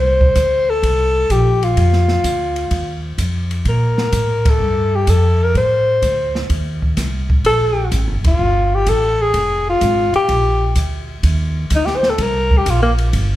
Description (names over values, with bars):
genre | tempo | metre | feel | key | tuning
jazz, small-group swing and bop | 127 BPM | 4/4 | swing 69% on 8ths | unclear | A4 = 440 Hz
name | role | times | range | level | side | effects
breathy alto saxophone | melody | 0.0-12.9 s | Bb3 to C5 | -16 LUFS | left 2 dB | none
upright bass | bass | 0.0-13.4 s | F1 to Bb2 | -17 LUFS | equal | none
open jazz drum kit | drums | 0.2-13.3 s | hi-hat, kick drum, ride cymbal, snare drum | -22 LUFS | equal | none
room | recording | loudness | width
moderate large studio reverb, RT60 1.3 s | heard from further back in the room | -14 LUFS | side -14 dB against mid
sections
0.0-11.2 A section; 11.2-13.4 B section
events
band accent 4.4, 8.2; alto saxophone solo 11.2-13.4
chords
0.0 Csus2; 1.8 Dm; 3.7 Bb5; 5.5 Amadd11; 6.5 Cm; 7.4 Gm9; 9.3 Fm; 10.3 Bb6; 11.2 Eb5